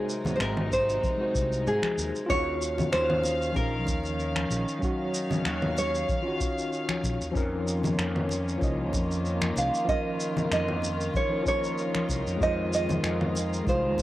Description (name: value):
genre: sunset chillout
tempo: 95 BPM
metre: 4/4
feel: swing 54% on 16ths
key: Eb dorian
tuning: A4 = 440 Hz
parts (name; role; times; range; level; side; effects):
- nylon-string guitar; melody; 0.0-14.0 s; Gb4 to F5; -29 LUFS; right 1 dB; cassette tape, analog delay
- tine electric piano; accompaniment; 0.0-14.0 s; F3 to F5; -32 LUFS; left 1 dB; medium stereo tremolo, auto-pan, cassette tape, analog delay
- warm studio string section; sustained chords; 0.0-14.0 s; C3 to F5; -34 LUFS; left 1 dB; cassette tape
- drifting glass-harmonics texture; texture; 0.0-2.3 s; Bb4 to Bb5; -49 LUFS; equal; none
- electronic shaker, congas and finger snaps; drums; 0.1-14.0 s; none; -33 LUFS; equal; cassette tape
- congas; percussion; 0.2-14.0 s; none; -36 LUFS; left 3 dB; none
- fretless electric bass; bass; 0.4-14.0 s; Ab1 to Ab2; -32 LUFS; equal; none
- electronic kick drum; drums; 0.7-14.0 s; none; -31 LUFS; equal; cassette tape
room: moderate spring reverb, RT60 2.5 s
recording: home recording on cassette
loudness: -25 LUFS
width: side -15 dB against mid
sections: 0.0-2.3 A section; 2.3-14.0 B section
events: none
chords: 0.0 Ab7; 2.3 Ebm9; 7.3 Db69; 12.4 Fm7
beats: 0.40 1.03 1.66 | 2.30 2.93 3.56 4.19 | 4.82 5.45 6.08 6.72 | 7.35 7.98 8.61 9.24 | 9.88 10.51 11.14 11.77 | 12.40 13.03 13.66